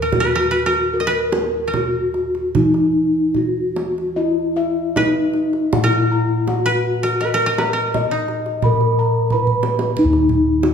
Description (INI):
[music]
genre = Javanese gamelan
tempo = 75-91 BPM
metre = 4/4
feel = straight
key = Eb pelog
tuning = A4 = 440 Hz
[part]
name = gamelan-type bronze metallophone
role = melody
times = 0.0-10.7 s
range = Eb4 to Eb5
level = -18 LUFS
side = left 1 dB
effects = none
[part]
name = koto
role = second line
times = 0.0-10.5 s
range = Eb4 to Eb5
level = -21 LUFS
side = right 2 dB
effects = none
[part]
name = gamelan-type bossed gongs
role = bass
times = 0.0-10.7 s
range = Eb2 to Bb4-30c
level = -23 LUFS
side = left 2 dB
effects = none
[part]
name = kendang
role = percussion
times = 0.1-10.7 s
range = none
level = -25 LUFS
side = right 4 dB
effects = none
[part]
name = gamelan-type bossed gongs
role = arpeggios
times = 4.2-9.7 s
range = Eb5 to Cb6-20c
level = -26 LUFS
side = left 2 dB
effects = none
[sound]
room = wet recital hall reverb, RT60 1.3 s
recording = studio reverb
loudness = -16 LUFS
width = side -7 dB against mid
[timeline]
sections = 0.0-10.0 A section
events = drum fill 9.5-10.0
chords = none